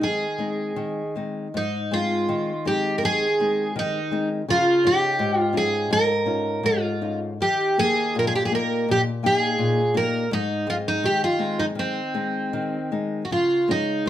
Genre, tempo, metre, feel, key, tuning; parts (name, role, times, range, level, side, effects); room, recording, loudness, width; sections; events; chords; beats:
fado; 76-85 BPM; 2/4; rubato; Ab major; A4 = 440 Hz
picked twelve-string acoustic guitar; melody; 0.0-14.1 s; C4 to Bb4; -21 LUFS; right 1 dB
nylon-string guitar; accompaniment; 0.0-14.1 s; Ab2 to G5; -26 LUFS; left 3 dB
moderate studio reverb, RT60 0.6 s; -20 LUFS; side -11 dB against mid
0.0-1.5 A section; 1.5-13.3 A section
0.0 Ab; 4.5 Dbadd9; 7.4 Eb; 10.3 Ab; 13.3 Dbsus2
| 0.01 0.77 | 1.55 2.29 | 3.03 3.76 | 4.48 5.20 | 5.90 6.64 | 7.40 8.15 | 8.88 9.59 | 10.30 11.02 | 11.76 12.53 | 13.30 14.05